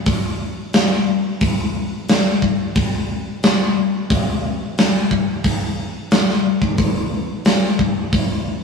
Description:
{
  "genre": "rock",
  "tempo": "89 BPM",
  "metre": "4/4",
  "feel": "straight",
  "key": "none",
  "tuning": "none",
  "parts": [
    { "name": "huge arena drum kit", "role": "drums", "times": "0.1-8.3 s", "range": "hi-hat, kick drum, snare drum", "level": "-16 LUFS", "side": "left 1 dB", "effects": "none" }
  ],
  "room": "moderate stone room reverb, RT60 0.9 s",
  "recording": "rough rehearsal-room recording, tube saturation, small room ambience",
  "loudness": "-16 LUFS",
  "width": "side -5 dB against mid",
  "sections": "0.0-8.6 A section",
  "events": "none",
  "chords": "none",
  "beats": "| 0.06 0.74 1.41 2.08 | 2.75 3.43 4.10 4.77 | 5.44 6.11 6.79 7.46 | 8.13"
}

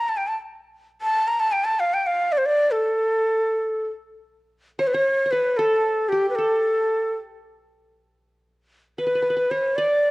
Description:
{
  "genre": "Arabic maqam ensemble",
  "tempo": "114 BPM",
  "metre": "4/4",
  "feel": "straight",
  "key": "A maqam kurd",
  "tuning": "A4 = 440 Hz",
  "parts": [
    { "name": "breathy bright ney", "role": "melody", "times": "0.0-10.1 s", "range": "G4 to Bb5", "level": "-20 LUFS", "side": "equal", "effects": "none" },
    { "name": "qanun", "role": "second line", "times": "4.8-10.1 s", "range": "G4 to D5", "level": "-29 LUFS", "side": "right 1 dB", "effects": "none" }
  ],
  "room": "light reverb",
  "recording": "worn, warbling old tape, cassette tape, warbly pitch drift",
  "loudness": "-20 LUFS",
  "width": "side -22 dB against mid",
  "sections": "0.0-4.3 A section; 4.3-10.1 B section",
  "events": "none",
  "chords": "none",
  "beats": "| 0.07 0.60 1.12 1.65 | 2.17 2.69 3.22 3.74 | 4.27 4.79 5.32 5.84 | 6.36 6.89 7.41 7.94 | 8.46 8.98 9.51 10.03"
}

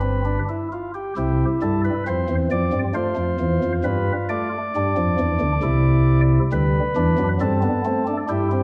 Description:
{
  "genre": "classical, baroque-style 3-part fugue for pipe organ",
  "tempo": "67 BPM",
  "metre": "3/4",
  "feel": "straight",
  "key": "C major",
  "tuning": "A4 = 440 Hz",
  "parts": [
    { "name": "chamber organ, flutes", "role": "solo", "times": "0.0-8.6 s", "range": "G1 to D5", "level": "-21 LUFS", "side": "equal", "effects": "none" }
  ],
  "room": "wet recital hall reverb, RT60 1.5 s",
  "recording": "dark, warm production",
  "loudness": "-21 LUFS",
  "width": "mono",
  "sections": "0.0-1.2 A section; 1.2-8.6 B section",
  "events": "none",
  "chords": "0.0 G; 1.2 C; 3.0 F; 3.9 G7; 5.6 C; 6.5 G/D",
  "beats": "0.26 | 1.17 2.07 2.96 | 3.86 4.75 5.64 | 6.53 7.41 8.30"
}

